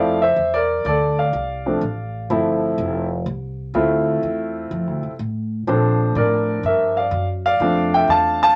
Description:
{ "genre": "jazz piano trio", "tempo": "125 BPM", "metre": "4/4", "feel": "swing 68% on 8ths", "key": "D minor", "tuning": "A4 = 440 Hz", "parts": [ { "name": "warm grand piano", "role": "melody", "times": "0.0-8.6 s", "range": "F3 to A5", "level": "-20 LUFS", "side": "equal", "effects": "none" }, { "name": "upright bass", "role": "bass", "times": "0.0-8.5 s", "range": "F1 to Bb2", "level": "-27 LUFS", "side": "equal", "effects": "none" } ], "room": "moderate studio reverb, RT60 0.5 s", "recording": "none", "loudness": "-20 LUFS", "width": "mono", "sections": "0.0-8.6 A section", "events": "none", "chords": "0.0 Dm7; 5.7 Bbmaj7" }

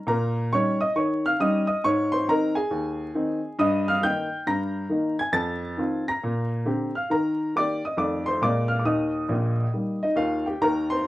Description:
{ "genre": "jazz, stride piano", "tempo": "137 BPM", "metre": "4/4", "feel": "swing 65% on 8ths", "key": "Ab major, Eb major from 3.6 s", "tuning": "A4 = 440 Hz", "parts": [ { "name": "clear upright piano", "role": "solo", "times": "0.0-11.1 s", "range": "Bb1 to Bb6", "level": "-22 LUFS", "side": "equal", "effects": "none" } ], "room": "moderate club reverb, RT60 0.5 s", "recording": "vinyl crackle", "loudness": "-22 LUFS", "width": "side -16 dB against mid", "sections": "0.0-10.6 A section", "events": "none", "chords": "0.1 Eb7/Bb; 1.8 Ab; 3.6 Eb/G; 5.3 F7; 6.2 Bb69; 7.1 Eb; 8.0 F7; 8.4 Bb7; 8.9 Eb" }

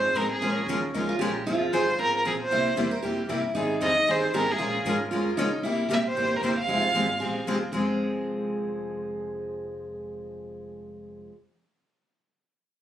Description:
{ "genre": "acoustic string swing (jazz manouche)", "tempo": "230 BPM", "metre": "4/4", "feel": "swing 56% on 8ths", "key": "F minor", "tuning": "A4 = 440 Hz", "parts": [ { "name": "warm violin", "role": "melody", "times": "0.0-7.4 s", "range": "Ab4 to F5", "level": "-25 LUFS", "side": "right 1 dB", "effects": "none" }, { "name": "picked steel-string acoustic guitar", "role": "second line", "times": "0.0-11.3 s", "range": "C4 to Bb4", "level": "-32 LUFS", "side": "right 2 dB", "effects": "none" }, { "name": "picked steel-string acoustic guitar", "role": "accompaniment", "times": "0.0-11.3 s", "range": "C3 to Bb4", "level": "-29 LUFS", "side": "left 2 dB", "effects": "none" }, { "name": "picked steel-string acoustic guitar", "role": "accompaniment", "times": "0.0-11.3 s", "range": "C3 to C5", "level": "-35 LUFS", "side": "right 4 dB", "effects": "none" }, { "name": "upright bass", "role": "bass", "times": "0.0-11.3 s", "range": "F1 to Bb2", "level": "-40 LUFS", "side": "equal", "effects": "none" } ], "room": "moderate studio reverb, RT60 0.7 s", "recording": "recorded on a phone in the room, studio reverb, compression", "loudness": "-24 LUFS", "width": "side -11 dB against mid", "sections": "0.0-7.7 A section; 7.7-9.8 B section", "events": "none", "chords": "0.4 Bbm7; 1.5 Fm; 2.5 C7; 3.5 Abmaj7; 4.6 Bbm7; 5.6 C7; 6.7 Fmadd9; 7.7 Fm" }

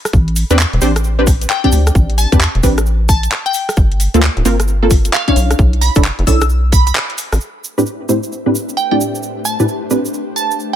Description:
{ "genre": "UK garage, two-step garage", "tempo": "132 BPM", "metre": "4/4", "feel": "swing 63% on 16ths", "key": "A minor", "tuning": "A4 = 439 Hz", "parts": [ { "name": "rubbery square bass", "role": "bass", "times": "0.1-7.4 s", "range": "D1 to E2", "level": "-14 LUFS", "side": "equal", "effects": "none" }, { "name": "electronic kick drum", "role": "drums", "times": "0.1-6.8 s", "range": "none", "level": "-12 LUFS", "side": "equal", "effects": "none" }, { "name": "garage drum kit", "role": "drums", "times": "0.1-7.4 s", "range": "handclaps, hi-hat, rim click", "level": "-20 LUFS", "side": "equal", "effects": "none" }, { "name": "cabasa", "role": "percussion", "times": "0.1-10.7 s", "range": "none", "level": "-25 LUFS", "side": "right 6 dB", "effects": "none" }, { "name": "punchy chord stab", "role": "stabs", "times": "0.5-10.1 s", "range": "A2 to D5", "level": "-17 LUFS", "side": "equal", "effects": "chorus, cassette tape, tape echo" }, { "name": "glassy wavetable pluck", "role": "melody", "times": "1.5-10.8 s", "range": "F5 to E6", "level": "-20 LUFS", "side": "right 2 dB", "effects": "chorus, tape echo" }, { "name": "ethereal airy pad", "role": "sustained chords", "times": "8.0-10.8 s", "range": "A3 to G5", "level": "-26 LUFS", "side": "left 4 dB", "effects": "ensemble chorus, built-in reverb, sidechain pumping" } ], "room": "little or no reverb", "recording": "none", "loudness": "-12 LUFS", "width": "side -10 dB against mid", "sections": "0.0-7.4 A section; 7.4-10.8 B section", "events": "band accent 7.0", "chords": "0.1 Am11; 3.8 Gm11; 5.4 Bm11; 7.4 Am11" }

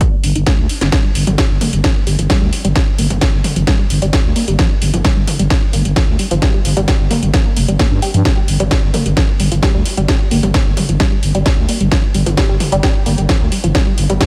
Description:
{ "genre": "driving peak-time techno", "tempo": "131 BPM", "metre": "4/4", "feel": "straight", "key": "G minor", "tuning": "A4 = 440 Hz", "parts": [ { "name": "tight sequenced synth", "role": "riff", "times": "0.0-14.2 s", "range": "F3 to G4", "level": "-23 LUFS", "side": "equal", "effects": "chorus, sidechain pumping, diffuse ambient delay" }, { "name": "electronic kick drum", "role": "drums", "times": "0.0-14.3 s", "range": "none", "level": "-17 LUFS", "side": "equal", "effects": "none" }, { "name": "techno drum kit", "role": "drums", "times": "0.0-14.3 s", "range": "hi-hat, snare drum, toms", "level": "-21 LUFS", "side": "equal", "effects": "none" }, { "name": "growling FM bass", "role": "bass", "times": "0.2-14.2 s", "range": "F1 to G2", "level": "-18 LUFS", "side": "equal", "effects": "tube saturation, sidechain pumping" } ], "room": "light reverb", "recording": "none", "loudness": "-14 LUFS", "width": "mono", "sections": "0.0-14.3 A section", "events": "filter sweep on synth arpeggio sound 0.0-14.3; drum fill 0.5-0.9", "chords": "none" }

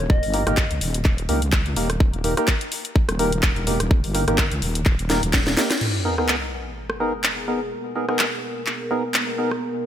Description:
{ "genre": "bass house", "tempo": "126 BPM", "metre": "4/4", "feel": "swing 55% on 16ths", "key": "G# harmonic minor", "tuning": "A4 = 439 Hz", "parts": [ { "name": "soft struck synth lead", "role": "melody", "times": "0.0-0.6 s", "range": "D#5", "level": "-30 LUFS", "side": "left 2 dB", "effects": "chorus, ping-pong delay" }, { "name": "wobble bass", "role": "bass", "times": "0.0-5.6 s", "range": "D#1 to C#2", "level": "-24 LUFS", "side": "equal", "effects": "chorus, tube saturation, sidechain pumping" }, { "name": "electronic kick drum", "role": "drums", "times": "0.1-5.4 s", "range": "none", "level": "-19 LUFS", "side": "equal", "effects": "small room ambience" }, { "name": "garage drum kit", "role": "drums", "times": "0.2-9.6 s", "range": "crash cymbal, handclaps, hi-hat, rim click, snare drum", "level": "-24 LUFS", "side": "equal", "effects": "small room ambience" }, { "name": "percussive organ stab", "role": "stabs", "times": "0.3-9.5 s", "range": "A#3 to A#4", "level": "-26 LUFS", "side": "equal", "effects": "wide subtle chorus, sidechain pumping, ping-pong delay" }, { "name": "dark analog pad", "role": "sustained chords", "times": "7.0-9.9 s", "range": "B3 to A#4", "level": "-29 LUFS", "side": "equal", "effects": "chorus, phaser, sidechain pumping" }, { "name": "sub drop", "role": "sound effects", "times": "5.8-7.7 s", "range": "none", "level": "-29 LUFS", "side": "equal", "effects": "none" } ], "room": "light reverb, digital ambience", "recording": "none", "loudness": "-19 LUFS", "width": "side -10 dB against mid", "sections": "0.0-5.8 A section; 5.8-9.9 B section", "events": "drum fill 5.1-5.8; band accent 5.7; impact 5.8-7.7", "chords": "0.0 D#; 5.8 G#madd9" }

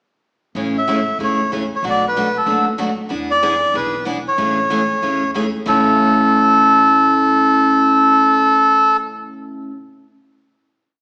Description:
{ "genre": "acoustic string swing (jazz manouche)", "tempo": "188 BPM", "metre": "4/4", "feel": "swing 60% on 8ths", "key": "A major", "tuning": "A4 = 435 Hz", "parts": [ { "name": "picked steel-string acoustic guitar", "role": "accompaniment", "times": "0.6-9.7 s", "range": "A2 to G#4", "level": "-22 LUFS", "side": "equal", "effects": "none" }, { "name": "upright bass", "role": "bass", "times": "0.6-9.7 s", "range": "F#1 to E2", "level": "-37 LUFS", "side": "equal", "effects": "none" }, { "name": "melodica", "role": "melody", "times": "0.8-9.0 s", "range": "A4 to E5", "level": "-16 LUFS", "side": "equal", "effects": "none" } ], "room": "wet recital hall reverb, RT60 1.6 s", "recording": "recorded in a church or concert hall, small speaker sound", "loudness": "-15 LUFS", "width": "mono", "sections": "0.6-5.7 A section; 5.7-8.2 final chord", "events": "none", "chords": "0.6 Amaj7; 1.8 Bm7; 3.1 E7; 4.4 Amaj7; 5.7 A" }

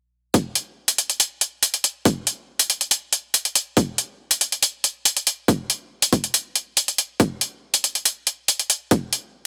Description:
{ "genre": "heavy wobble dubstep", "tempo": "140 BPM", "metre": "4/4", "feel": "half-time", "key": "none", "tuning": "none", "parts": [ { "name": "electronic hi-hat", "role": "drums", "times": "0.3-9.2 s", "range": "none", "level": "-20 LUFS", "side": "equal", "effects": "none" }, { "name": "electronic kick drum", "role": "drums", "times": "0.3-9.0 s", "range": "none", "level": "-20 LUFS", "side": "equal", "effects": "high-pass filter on kick" } ], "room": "little or no reverb", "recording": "none", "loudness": "-22 LUFS", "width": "mono", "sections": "0.3-9.5 A section", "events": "none", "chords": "none" }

